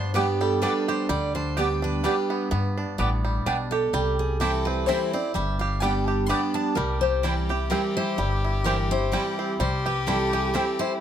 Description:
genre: bluegrass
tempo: 127 BPM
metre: 3/4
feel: swing 55% on 8ths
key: C major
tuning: A4 = 440 Hz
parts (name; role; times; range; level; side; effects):
- picked steel-string acoustic guitar; melody; 0.0-10.9 s; G4 to B5; -29 LUFS; equal; tape echo
- picked steel-string acoustic guitar; accompaniment; 0.0-11.0 s; G2 to G4; -28 LUFS; right 1 dB; none
- bluegrass banjo; arpeggios; 0.0-11.0 s; G3 to G4; -30 LUFS; right 3 dB; none
- upright bass; bass; 0.0-10.6 s; G1 to G2; -28 LUFS; equal; none
- mandolin; stabs; 0.1-10.6 s; B3 to G5; -28 LUFS; right 2 dB; none
- clear fiddle; second line; 6.8-11.0 s; G4; -31 LUFS; left 5 dB; none
room: light reverb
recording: close, detailed microphones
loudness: -22 LUFS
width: side -9 dB against mid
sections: 0.0-11.0 A section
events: none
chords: 0.0 G; 3.9 C; 5.3 G; 6.8 C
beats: 0.15 0.62 | 1.10 1.57 2.04 | 2.51 2.98 3.46 | 3.93 4.40 4.87 | 5.35 5.82 6.29 | 6.76 7.24 7.71 | 8.18 8.65 9.13 | 9.60 10.07 10.55

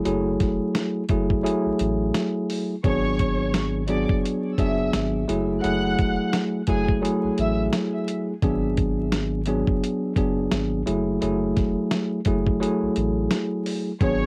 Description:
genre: hip hop, boom-bap hip-hop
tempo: 86 BPM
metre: 4/4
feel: swing 58% on 16ths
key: F# minor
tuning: A4 = 440 Hz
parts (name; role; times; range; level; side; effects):
- bell-like tine electric piano; accompaniment; 0.0-14.3 s; F#3 to G#4; -26 LUFS; equal; cassette tape, high-pass filter, low-pass filter
- soft dub sub bass; bass; 0.1-14.3 s; E1 to A1; -31 LUFS; equal; none
- dusty soul sampler-style drum kit; drums; 0.1-14.2 s; hi-hat, kick drum, snare drum; -28 LUFS; equal; cassette tape
- warm studio violin section; melody; 2.9-7.6, 14.0-14.3 s; G#4 to F#6; -32 LUFS; equal; high-pass filter, low-pass filter, analog delay
room: light reverb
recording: home recording on cassette, vinyl crackle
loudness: -24 LUFS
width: mono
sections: 0.0-14.0 A section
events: none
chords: 0.0 F#m9; 2.8 G#m7b5; 5.3 F#m9; 8.4 G#m7b5; 10.9 F#m9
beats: | 0.05 0.75 1.45 2.15 | 2.84 3.54 4.24 4.94 | 5.63 6.33 7.03 7.73 | 8.43 9.12 9.82 10.52 | 11.22 11.91 12.61 13.31 | 14.01

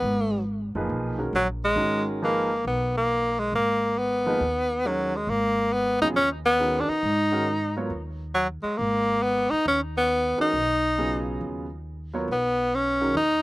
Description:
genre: jazz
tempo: 137 BPM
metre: 4/4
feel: swing 67% on 8ths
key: G# dorian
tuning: A4 = 440 Hz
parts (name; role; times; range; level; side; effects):
- clear tenor saxophone; melody; 0.0-13.4 s; F#3 to D#4; -22 LUFS; equal; none
- upright bass; bass; 0.0-13.4 s; F#1 to G#2; -31 LUFS; equal; none
- clear grand piano; accompaniment; 0.8-13.1 s; A#2 to C#5; -30 LUFS; right 1 dB; none
room: little or no reverb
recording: recorded outdoors, with no room sound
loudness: -22 LUFS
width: side -19 dB against mid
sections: 0.0-13.4 A section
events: none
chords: 0.0 G#m9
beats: | 0.03 0.46 0.90 1.34 | 1.78 2.22 2.65 3.09 | 3.53 3.97 4.41 4.84 | 5.28 5.72 6.16 6.60 | 7.04 7.47 7.91 8.35 | 8.79 9.22 9.66 10.10 | 10.54 10.97 11.41 11.85 | 12.29 12.72 13.16

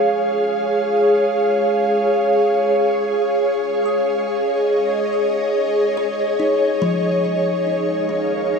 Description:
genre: ambient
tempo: free time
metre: none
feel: none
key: unclear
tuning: A4 = 441 Hz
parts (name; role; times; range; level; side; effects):
- ethereal airy pad; sustained chords; 0.0-8.6 s; Eb4 to F5; -16 LUFS; equal; ensemble chorus, built-in reverb, shimmer reverb
- kalimba; arpeggios; 0.0-8.6 s; F3 to Eb6; -27 LUFS; equal; ping-pong delay
room: wet cathedral reverb, RT60 4.9 s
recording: none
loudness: -16 LUFS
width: side -5 dB against mid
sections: 0.0-8.6 A section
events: fade-in on kalimba 0.0-8.6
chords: 0.0 Db; 7.2 Eb7sus4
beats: free time

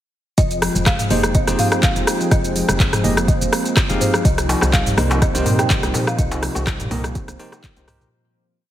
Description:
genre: afro house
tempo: 124 BPM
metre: 4/4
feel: swing 54% on 16ths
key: F minor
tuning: A4 = 440 Hz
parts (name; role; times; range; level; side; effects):
- folk marimba with medium mallets; melody; 0.4-7.1 s; C5 to G5; -27 LUFS; right 1 dB; dub echo
- warm analog pad; sustained chords; 0.4-8.1 s; C3 to G5; -28 LUFS; right 2 dB; chorus, sidechain pumping
- handpan; arpeggios; 0.4-8.1 s; F3 to C4; -25 LUFS; right 1 dB; sidechain pumping, dub echo
- woody FM bass; bass; 0.4-8.1 s; F1 to C2; -23 LUFS; equal; sidechain pumping
- afro-pop drum kit; drums; 0.4-8.1 s; handclaps, hi-hat, rim click, shaker, toms; -20 LUFS; equal; none
- electronic kick drum; drums; 0.4-7.7 s; none; -18 LUFS; equal; none
- bell-like tine electric piano; stabs; 1.1-8.1 s; Eb4 to F5; -27 LUFS; left 2 dB; medium stereo tremolo, sidechain pumping, dub echo
- darbuka; percussion; 4.5-8.1 s; none; -25 LUFS; left 1 dB; none
room: light reverb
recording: heavily compressed radio sound, multiband compression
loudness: -15 LUFS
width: side -12 dB against mid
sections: 0.4-8.1 drop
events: drop 0.4-8.1; fade-out 5.5-8.1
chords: 0.4 Fm7; 4.2 Cm7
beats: | 0.38 0.86 1.35 1.83 | 2.31 2.80 3.28 3.77 | 4.25 4.73 5.22 5.70 | 6.19 6.67 7.15 7.64

